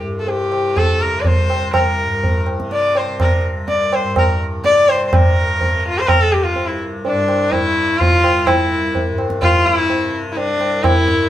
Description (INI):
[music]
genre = indian classical, Hindustani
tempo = 125 BPM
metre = 7/4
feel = straight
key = C raga khamaj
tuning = A4 = 441 Hz
[part]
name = tanpura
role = drone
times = 0.0-11.3 s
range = C2 to C3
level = -25 LUFS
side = equal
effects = none
[part]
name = clear sarangi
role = melody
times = 0.2-11.3 s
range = D4 to D5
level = -16 LUFS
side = left 1 dB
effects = none
[part]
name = tabla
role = percussion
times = 0.3-11.2 s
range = none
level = -17 LUFS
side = right 1 dB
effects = none
[sound]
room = wet studio reverb, RT60 0.8 s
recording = band playing live in one room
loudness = -14 LUFS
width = side -12 dB against mid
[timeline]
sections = 0.0-5.1 A section; 5.1-11.3 B section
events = speeding up 0.0-11.3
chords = none